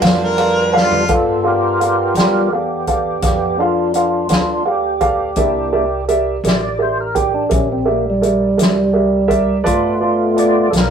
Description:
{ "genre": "slow blues", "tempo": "56 BPM (dotted quarters)", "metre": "12/8", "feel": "straight", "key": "G mixolydian", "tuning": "A4 = 440 Hz", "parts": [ { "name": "warm harmonica", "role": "melody", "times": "0.0-1.1 s", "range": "F4 to F5", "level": "-18 LUFS", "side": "equal", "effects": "none" }, { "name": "dark upright piano", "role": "accompaniment", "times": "0.0-10.9 s", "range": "F4 to G5", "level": "-18 LUFS", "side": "right 3 dB", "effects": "none" }, { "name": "tonewheel organ", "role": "sustained chords", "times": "0.0-10.9 s", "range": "G3 to D5", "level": "-17 LUFS", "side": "equal", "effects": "slow rotary speaker, overdrive, chorus vibrato" }, { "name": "warm horn section", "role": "sustained chords", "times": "0.0-1.1 s", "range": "G3 to F4", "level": "-30 LUFS", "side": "left 3 dB", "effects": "none" }, { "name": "upright bass", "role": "bass", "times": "0.0-10.9 s", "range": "G1 to G2", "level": "-27 LUFS", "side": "left 1 dB", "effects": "none" }, { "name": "vintage drum kit", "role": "drums", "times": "0.0-10.9 s", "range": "hi-hat, kick drum, ride cymbal, snare drum, toms", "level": "-19 LUFS", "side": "left 1 dB", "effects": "none" } ], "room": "moderate small room ambience, RT60 0.5 s", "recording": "rough rehearsal-room recording, warm saturation", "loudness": "-13 LUFS", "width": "side -7 dB against mid", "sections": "0.0-1.1 A section; 1.1-10.9 A section", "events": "harmonica solo 0.0-1.1; drum fill 0.7-1.1; tonewheel organ solo 1.1-10.9", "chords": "0.0 G7; 5.4 C7; 9.7 G7" }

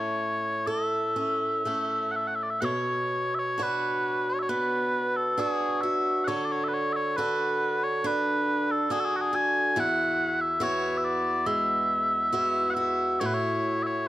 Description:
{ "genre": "celtic folk, Celtic slow air", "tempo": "68 BPM", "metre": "4/4", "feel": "uneven beats, rubato", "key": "unclear", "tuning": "A4 = 441 Hz", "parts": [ { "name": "mellow small bagpipes", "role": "melody", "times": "0.0-14.1 s", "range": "F#4 to G#5", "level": "-26 LUFS", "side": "equal", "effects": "none" }, { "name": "picked swing-style acoustic guitar", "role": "accompaniment", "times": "0.0-14.1 s", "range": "E2 to C#5", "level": "-29 LUFS", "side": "right 1 dB", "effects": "none" } ], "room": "light reverb", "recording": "close, detailed microphones", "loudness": "-24 LUFS", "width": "side -15 dB against mid", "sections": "0.0-2.6 A section; 2.6-14.1 B section", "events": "none", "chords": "0.0 A; 2.6 Bmadd9; 6.3 D; 9.8 Eadd9; 13.2 A6" }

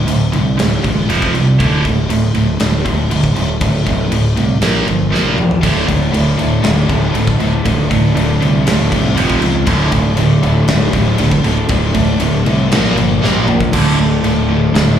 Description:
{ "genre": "hard rock", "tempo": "119 BPM", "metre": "4/4", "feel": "straight", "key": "D minor", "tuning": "A4 = 439 Hz", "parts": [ { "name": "biting overdriven guitar", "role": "riff", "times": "0.0-15.0 s", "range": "D2 to Bb3", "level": "-17 LUFS", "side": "right 5 dB", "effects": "phaser" }, { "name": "scooped high-gain guitar", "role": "riff", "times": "0.0-15.0 s", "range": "D2 to Bb3", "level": "-20 LUFS", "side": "left 6 dB", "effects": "distortion" }, { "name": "fuzz fingered electric bass", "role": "bass", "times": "0.0-15.0 s", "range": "D1 to E2", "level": "-17 LUFS", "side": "left 1 dB", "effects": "overdrive" }, { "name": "gated 80s drum kit", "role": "drums", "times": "0.1-14.9 s", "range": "crash cymbal, kick drum, snare drum, splash cymbal, toms", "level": "-19 LUFS", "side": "left 1 dB", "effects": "none" }, { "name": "distorted electric guitar", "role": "riff", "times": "5.6-15.0 s", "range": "D2 to F4", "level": "-18 LUFS", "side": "left 1 dB", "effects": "distortion, slapback echo" } ], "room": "light reverb", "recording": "live gig heard through the venue's PA, club reverb", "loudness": "-11 LUFS", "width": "side -9 dB against mid", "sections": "0.0-13.7 A section; 13.7-15.0 B section", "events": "drum fill 5.1-5.6, 13.2-13.7", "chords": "0.0 D5; 1.1 F5; 1.6 D5; 4.6 Bb5; 5.6 D5; 9.2 F5; 9.7 D5; 12.7 Bb5; 13.7 Dm" }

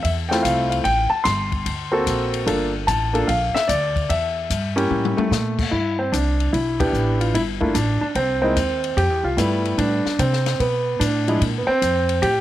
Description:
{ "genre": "jazz piano trio", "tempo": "148 BPM", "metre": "4/4", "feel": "swing 66% on 8ths", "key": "C major from 5.7 s", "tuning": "A4 = 439 Hz", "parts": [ { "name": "warm concert grand piano", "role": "melody", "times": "0.0-12.4 s", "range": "F3 to C6", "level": "-20 LUFS", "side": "equal", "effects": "none" }, { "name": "upright bass", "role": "bass", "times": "0.0-12.4 s", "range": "G1 to C3", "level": "-24 LUFS", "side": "equal", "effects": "none" }, { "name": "compact cocktail drum kit", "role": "drums", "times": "0.0-12.4 s", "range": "crash cymbal, hi-hat, kick drum, ride cymbal, snare drum, toms", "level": "-27 LUFS", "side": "left 6 dB", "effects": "none" } ], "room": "light reverb, small room ambience", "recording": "1960s-style stereo", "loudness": "-18 LUFS", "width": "side -13 dB against mid", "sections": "0.0-5.7 A section; 5.7-12.4 B section", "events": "drum fill 4.9-5.3; band accent 6.7", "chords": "0.0 Dm9 (rootless); 0.9 Gsus24; 1.7 D7b13; 2.5 Gm9; 4.1 A7b9/E; 5.7 Cmaj7; 7.3 Gsus2; 8.2 Cm; 9.0 Fmaj9#11 (rootless); 10.6 Bm7; 11.4 Bb5" }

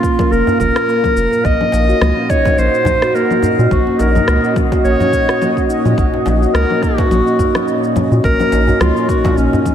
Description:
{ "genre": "organic downtempo", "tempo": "106 BPM", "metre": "4/4", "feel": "swing 56% on 16ths", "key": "unclear", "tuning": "A4 = 440 Hz", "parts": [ { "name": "warm clarinet", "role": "melody", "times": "0.0-9.7 s", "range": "Db4 to Eb5", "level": "-17 LUFS", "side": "left 1 dB", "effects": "tape echo" }, { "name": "warm analog pad", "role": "sustained chords", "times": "0.0-9.7 s", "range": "Bb2 to F5", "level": "-21 LUFS", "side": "right 1 dB", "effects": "chorus, vintage 12-bit sampler grit, sidechain pumping" }, { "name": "steel tongue drum", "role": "arpeggios", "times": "0.0-9.7 s", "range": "Bb3 to Bb4", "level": "-18 LUFS", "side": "right 1 dB", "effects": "diffuse ambient delay" }, { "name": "electronic kick drum", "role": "drums", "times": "0.0-9.7 s", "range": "none", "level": "-18 LUFS", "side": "equal", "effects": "studio reverb" }, { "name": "electronic shaker, congas and rim click", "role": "drums", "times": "0.0-9.7 s", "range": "none", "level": "-23 LUFS", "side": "left 3 dB", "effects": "studio reverb" }, { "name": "djembe", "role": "percussion", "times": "0.2-9.6 s", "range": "none", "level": "-24 LUFS", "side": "left 1 dB", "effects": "none" }, { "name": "round analog bass", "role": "bass", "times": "0.3-9.5 s", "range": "F1 to Bb2", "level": "-15 LUFS", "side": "equal", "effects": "sidechain pumping" } ], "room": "moderate lush hall reverb, RT60 2.4 s", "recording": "dreamy mix soaked in reverb", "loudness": "-11 LUFS", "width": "side -9 dB against mid", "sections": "0.0-9.7 A section", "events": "none", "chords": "0.0 Bbm; 1.4 Gb6/Bb" }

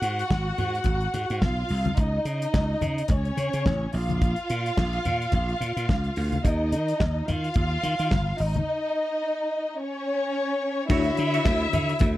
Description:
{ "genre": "disco", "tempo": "108 BPM", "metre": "4/4", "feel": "swing 56% on 16ths", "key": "unclear", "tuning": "A4 = 442 Hz", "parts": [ { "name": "dark symphonic string section", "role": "second line", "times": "0.0-12.2 s", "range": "Db4 to Gb5", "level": "-27 LUFS", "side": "equal", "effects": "none" }, { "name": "slap bass", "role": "bass", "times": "0.0-12.2 s", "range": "G1 to Eb3", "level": "-27 LUFS", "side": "equal", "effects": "none" }, { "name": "warm soul drum kit", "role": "drums", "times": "0.0-12.2 s", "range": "crash cymbal, hi-hat, kick drum, snare drum", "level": "-25 LUFS", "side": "equal", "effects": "none" }, { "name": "congas", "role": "percussion", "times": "0.3-12.1 s", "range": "none", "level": "-32 LUFS", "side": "left 2 dB", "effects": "none" }, { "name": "reed electric piano", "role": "accompaniment", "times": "10.9-12.2 s", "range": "D3 to C#5", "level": "-28 LUFS", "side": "left 5 dB", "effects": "overdrive, fast tremolo" }, { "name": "semi-hollow electric guitar", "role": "accompaniment", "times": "10.9-11.9 s", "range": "E4 to C#5", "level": "-33 LUFS", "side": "right 6 dB", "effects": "wide subtle chorus" } ], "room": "little or no reverb", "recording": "dry, close 1970s-style studio recording", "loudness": "-23 LUFS", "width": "side -15 dB against mid", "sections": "0.0-10.9 A section; 10.9-12.2 B section", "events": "break 8.7-10.9", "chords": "0.0 Ab7(no3); 2.0 Dbsus2; 3.9 Bb5; 6.4 Ebsus2; 8.4 Ab5; 9.8 N.C.; 10.9 Dmaj9" }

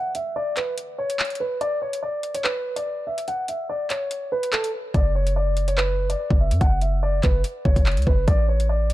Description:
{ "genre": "hip hop, drill", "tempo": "144 BPM", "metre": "4/4", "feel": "half-time", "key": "unclear", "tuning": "A4 = 442 Hz", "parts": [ { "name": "dark concert grand piano", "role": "melody", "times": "0.0-8.9 s", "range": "A4 to F#5", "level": "-25 LUFS", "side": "equal", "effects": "low-pass filter, digital delay" }, { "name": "drill drum kit", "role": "drums", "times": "0.1-8.9 s", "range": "handclaps, hi-hat, kick drum", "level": "-22 LUFS", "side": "equal", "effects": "none" }, { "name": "hard-hitting 808-style bass", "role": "bass", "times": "4.9-8.9 s", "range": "F#1 to F#2", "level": "-21 LUFS", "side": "equal", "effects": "none" } ], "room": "little or no reverb", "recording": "dark, warm production", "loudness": "-20 LUFS", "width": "side -16 dB against mid", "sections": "0.0-8.9 A section", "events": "break 0.0-4.9", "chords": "0.0 N.C.; 4.9 F#5; 8.3 A" }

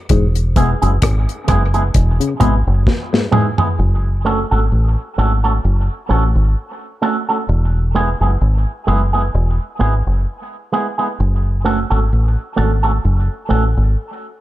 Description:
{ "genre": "dub reggae", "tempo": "65 BPM", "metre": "4/4", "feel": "swing 56% on 16ths", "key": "F# minor", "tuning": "A4 = 440 Hz", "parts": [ { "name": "muted clav", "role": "arpeggios", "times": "0.1-3.5 s", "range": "G#2 to C#3", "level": "-22 LUFS", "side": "left 5 dB", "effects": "phaser, dub echo" }, { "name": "deep dub fingered electric bass", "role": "bass", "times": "0.1-13.9 s", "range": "E1 to A1", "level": "-15 LUFS", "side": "equal", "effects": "none" }, { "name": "deep reggae drum kit", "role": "drums", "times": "0.1-3.8 s", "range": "hi-hat, kick drum, rim click, snare drum, toms", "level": "-17 LUFS", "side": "equal", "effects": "none" }, { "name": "electric guitar with an envelope filter", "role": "accompaniment", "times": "0.6-13.6 s", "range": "G#3 to A4", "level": "-20 LUFS", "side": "right 3 dB", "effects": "dub echo" } ], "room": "light reverb, small room ambience", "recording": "dark, warm production", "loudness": "-14 LUFS", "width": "side -15 dB against mid", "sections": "0.0-3.8 A section; 3.8-14.4 B section", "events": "drum fill 2.9-3.8", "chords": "0.1 E; 3.8 F#m; 7.5 E; 11.2 F#m" }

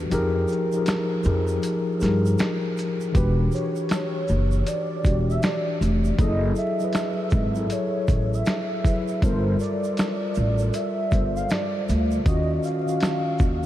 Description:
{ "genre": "lo-fi hip hop", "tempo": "79 BPM", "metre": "4/4", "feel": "swing 64% on 16ths", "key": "unclear", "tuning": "A4 = 440 Hz", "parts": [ { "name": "mellow tine electric piano", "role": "accompaniment", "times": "0.0-13.7 s", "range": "D#3 to C5", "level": "-26 LUFS", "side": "left 2 dB", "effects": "medium stereo tremolo" }, { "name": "upright bass", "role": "bass", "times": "0.0-13.7 s", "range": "E1 to G2", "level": "-23 LUFS", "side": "equal", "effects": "none" }, { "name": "lo-fi sampler-style drum kit", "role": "drums", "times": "0.1-13.6 s", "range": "finger snaps, hi-hat, kick drum, shaker, snare drum", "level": "-26 LUFS", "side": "equal", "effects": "overdrive" }, { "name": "tube shaker", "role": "percussion", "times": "0.1-13.7 s", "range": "none", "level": "-48 LUFS", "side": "right 11 dB", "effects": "none" }, { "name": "warm velvety synth lead", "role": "melody", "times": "3.2-13.7 s", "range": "B4 to F5", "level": "-29 LUFS", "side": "right 1 dB", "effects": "chorus" } ], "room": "moderate huge ambient reverb, RT60 8.9 s", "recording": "dreamy mix soaked in reverb, vinyl crackle", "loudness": "-21 LUFS", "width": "side -13 dB against mid", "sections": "0.0-3.1 A section; 3.1-13.7 B section", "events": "kick muted 0.1-3.1", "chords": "0.1 Fm11; 3.1 Em9; 6.2 F#m9; 9.2 Gm9; 12.3 D#m9" }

